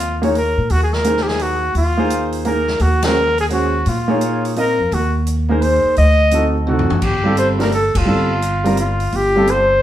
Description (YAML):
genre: modal jazz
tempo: 171 BPM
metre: 3/4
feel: swing 65% on 8ths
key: Eb dorian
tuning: A4 = 439 Hz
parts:
  - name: mellow trumpet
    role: melody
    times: 0.0-9.8 s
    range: F4 to Eb5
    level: -18 LUFS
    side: left 1 dB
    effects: none
  - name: upright bass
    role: bass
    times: 0.0-9.8 s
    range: F1 to Bb2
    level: -19 LUFS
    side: equal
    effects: none
  - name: swinging big-band drum kit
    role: drums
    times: 0.0-9.6 s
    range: crash cymbal, hi-hat, kick drum, ride cymbal, snare drum, toms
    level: -26 LUFS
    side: left 1 dB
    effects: none
  - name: warm concert grand piano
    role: accompaniment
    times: 0.2-9.5 s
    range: G3 to Eb5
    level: -19 LUFS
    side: right 1 dB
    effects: none
room: wet studio reverb, RT60 0.8 s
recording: heard from further back in the room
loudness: -14 LUFS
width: side -12 dB against mid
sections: 0.0-7.0 A section; 7.0-9.8 B section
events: band accent 3.0, 7.9; drum fill 6.7-7.0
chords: 0.0 Eb9sus4; 0.7 Abadd9/Eb; 2.8 Ebm11; 4.9 Abadd9/Eb; 6.0 D7b9; 7.0 G7sus2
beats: 0.00 0.35 | 0.70 1.05 1.40 | 1.75 2.11 2.46 | 2.81 3.16 3.51 | 3.86 4.21 4.57 | 4.92 5.27 5.62 | 5.97 6.32 6.67 | 7.03 7.38 7.73 | 8.08 8.43 8.78 | 9.13 9.48